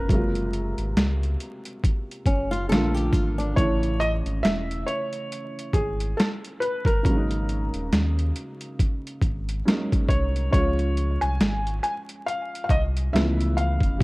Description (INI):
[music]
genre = lo-fi hip hop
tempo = 69 BPM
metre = 4/4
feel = swing 58% on 16ths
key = Db major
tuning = A4 = 440 Hz
[part]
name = felt-muted upright piano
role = melody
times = 0.0-14.0 s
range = G#4 to Ab5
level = -28 LUFS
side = equal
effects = none
[part]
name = dark upright piano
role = accompaniment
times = 0.0-14.0 s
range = C3 to F4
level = -29 LUFS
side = equal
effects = cassette tape
[part]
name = sub bass with octave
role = bass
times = 0.0-14.0 s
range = Eb1 to Eb2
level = -26 LUFS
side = equal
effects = none
[part]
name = boom bap sampler-style drum kit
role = drums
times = 0.1-14.0 s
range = hi-hat, kick drum, snare drum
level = -23 LUFS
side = equal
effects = overdrive
[part]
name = flamenco guitar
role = second line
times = 2.3-3.8 s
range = Db4 to A4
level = -30 LUFS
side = left 1 dB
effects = analog delay
[sound]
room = light reverb, small room reverb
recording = vinyl crackle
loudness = -22 LUFS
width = side -22 dB against mid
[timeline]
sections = 0.0-14.0 A section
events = none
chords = 0.1 Gbmaj9#11; 2.7 Bbmaj7; 3.6 Amaj7; 7.0 Ab9sus4; 10.5 Dbmaj7; 13.1 Db7alt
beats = | 0.09 0.96 1.83 2.70 | 3.57 4.44 5.31 6.18 | 7.05 7.92 8.79 9.65 | 10.52 11.39 12.26 13.13 | 14.00